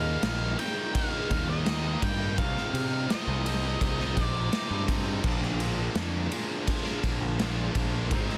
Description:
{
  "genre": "quiet-loud alternative rock",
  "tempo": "84 BPM",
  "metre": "4/4",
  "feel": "straight",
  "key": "unclear",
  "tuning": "A4 = 440 Hz",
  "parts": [
    { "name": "octave-fuzz lead guitar", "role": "melody", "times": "0.0-4.8 s", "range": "Eb5 to G5", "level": "-36 LUFS", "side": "equal", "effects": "distortion" },
    { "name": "fuzz guitar", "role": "riff", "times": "0.0-8.4 s", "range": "Ab2 to Eb4", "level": "-41 LUFS", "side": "equal", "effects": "none" },
    { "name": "tight distorted guitar", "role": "riff", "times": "0.0-8.4 s", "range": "Ab2 to Eb4", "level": "-39 LUFS", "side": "equal", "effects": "distortion" },
    { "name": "tight distorted guitar", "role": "riff", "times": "0.0-8.4 s", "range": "Ab2 to Eb4", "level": "-40 LUFS", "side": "equal", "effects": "none" },
    { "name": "growling picked electric bass", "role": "bass", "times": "0.0-8.3 s", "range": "Ab1 to C3", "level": "-33 LUFS", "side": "equal", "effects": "overdrive" },
    { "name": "raw garage drum kit", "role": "drums", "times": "0.2-8.4 s", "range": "crash cymbal, kick drum, ride cymbal, snare drum", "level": "-32 LUFS", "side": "equal", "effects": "none" }
  ],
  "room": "little or no reverb",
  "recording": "dense, heavily limited modern master",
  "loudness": "-29 LUFS",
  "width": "mono",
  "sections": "0.0-8.4 A section",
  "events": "none",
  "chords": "0.0 Eb; 2.4 Cm; 5.2 Bb",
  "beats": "0.23 0.95 1.67 | 2.38 3.10 3.81 4.53 | 5.24 5.96 6.67 7.39 | 8.11"
}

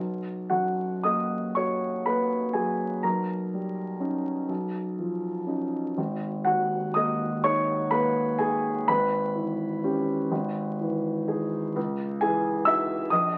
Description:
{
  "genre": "classical, impressionist solo piano",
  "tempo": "41 BPM (dotted quarters)",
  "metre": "6/8",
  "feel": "uneven beats, rubato",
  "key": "unclear",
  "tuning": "A4 = 438 Hz",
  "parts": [
    { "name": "warm concert grand piano", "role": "solo", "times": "0.0-13.4 s", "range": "G#1 to E6", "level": "-27 LUFS", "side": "equal", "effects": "none" }
  ],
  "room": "moderate studio reverb, RT60 0.5 s",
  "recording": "very old 78 rpm record, vinyl crackle",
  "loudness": "-27 LUFS",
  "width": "mono",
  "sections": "0.0-13.4 A section",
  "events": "none",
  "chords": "0.0 Bmaj7; 3.0 D#7/B; 4.5 C#9/B; 6.0 G#m11; 8.9 E6/G#; 10.3 Emaj7/G#; 11.8 C#madd9",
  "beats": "1.56 | 3.04 4.49 | 5.98 7.44 | 8.88 10.31 | 11.76 13.11"
}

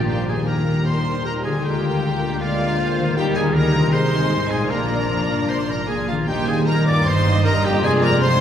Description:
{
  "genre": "classical",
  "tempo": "155 BPM",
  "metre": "4/4",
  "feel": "rubato",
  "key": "Eb major",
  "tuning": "A4 = 440 Hz",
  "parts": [
    { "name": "warm symphonic violin section", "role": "second line", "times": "0.0-8.4 s", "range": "G3 to Bb4", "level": "-30 LUFS", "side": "left 1 dB", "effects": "none" },
    { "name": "concert harp", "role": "arpeggios", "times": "0.0-8.4 s", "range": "F2 to Ab4", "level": "-23 LUFS", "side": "left 2 dB", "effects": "none" },
    { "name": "warm symphonic violin section", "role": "melody", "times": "0.1-8.4 s", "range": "F5 to D6", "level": "-28 LUFS", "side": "left 2 dB", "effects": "none" },
    { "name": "clear oboe", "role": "second line", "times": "0.1-8.4 s", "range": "F4 to D5", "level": "-27 LUFS", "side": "right 1 dB", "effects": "none" },
    { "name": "dark clarinet", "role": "second line", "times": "0.1-8.4 s", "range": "F4 to D5", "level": "-27 LUFS", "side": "left 1 dB", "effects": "none" },
    { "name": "mellow hollow concert flute", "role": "second line", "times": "0.1-8.4 s", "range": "F5 to D6", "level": "-32 LUFS", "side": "left 1 dB", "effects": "none" },
    { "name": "warm symphonic viola section", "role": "accompaniment", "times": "0.1-8.4 s", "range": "G4 to Eb5", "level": "-29 LUFS", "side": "right 1 dB", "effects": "none" },
    { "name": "clear trombone section", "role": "sustained chords", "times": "0.1-8.4 s", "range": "F2 to Ab3", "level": "-28 LUFS", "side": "right 1 dB", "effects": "none" },
    { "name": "dark French horn section", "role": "sustained chords", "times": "0.1-8.4 s", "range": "Ab3 to F4", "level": "-31 LUFS", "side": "left 4 dB", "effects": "none" },
    { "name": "rich symphonic cello section", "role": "bass", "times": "0.1-8.4 s", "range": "Eb2 to Eb3", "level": "-27 LUFS", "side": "right 2 dB", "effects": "none" },
    { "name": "warm symphonic double bass section", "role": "bass", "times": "0.1-8.4 s", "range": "F1 to Eb2", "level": "-25 LUFS", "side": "right 2 dB", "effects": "none" }
  ],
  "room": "wet church reverb, RT60 3.5 s",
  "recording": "recorded in a church or concert hall",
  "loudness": "-17 LUFS",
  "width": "side -9 dB against mid",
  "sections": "0.1-8.4 A section",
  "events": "none",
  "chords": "0.1 Eb; 1.6 Bb7/D; 3.2 Eb; 3.9 Ab/C; 4.7 Bb; 6.3 Eb; 7.1 Eb/G; 7.8 Bb7/F",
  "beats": "| 0.09 0.47 0.86 1.25 | 1.64 2.02 2.41 2.79 | 3.17 3.55 3.93 4.31 | 4.70 5.10 5.50 5.89 | 6.29 6.68 7.07 7.46 | 7.84 8.23"
}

